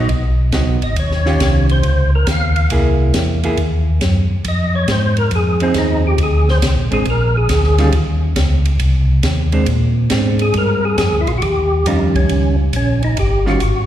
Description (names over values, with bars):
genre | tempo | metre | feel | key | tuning
soul jazz organ trio | 138 BPM | 4/4 | swing 67% on 8ths | Eb mixolydian | A4 = 442 Hz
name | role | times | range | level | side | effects
percussive tonewheel organ | melody | 0.0-13.9 s | C4 to F5 | -19 LUFS | left 1 dB | slow rotary speaker, chorus vibrato, plate reverb, slapback echo
vintage hollow-body jazz guitar | accompaniment | 0.0-13.6 s | Eb3 to G#4 | -20 LUFS | right 3 dB | plate reverb, slapback echo
mellow tonewheel organ | bass | 0.0-13.9 s | G1 to Bb2 | -15 LUFS | equal | overdrive, chorus vibrato, slow rotary speaker
open jazz drum kit | drums | 0.1-13.7 s | hi-hat, kick drum, ride cymbal, snare drum | -24 LUFS | equal | none
room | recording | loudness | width
light reverb | live gig heard through the venue's PA, recital hall reverb | -13 LUFS | side -11 dB against mid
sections
0.0-11.4 A section; 11.4-13.9 B section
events
tonewheel organ solo 0.0-11.4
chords
0.0 Abm7; 1.0 Eb9; 2.7 C7alt; 4.4 Fm7; 6.2 Bb9; 7.9 Dbsus2; 8.8 Cmadd9; 9.7 Bb9; 11.4 Eb9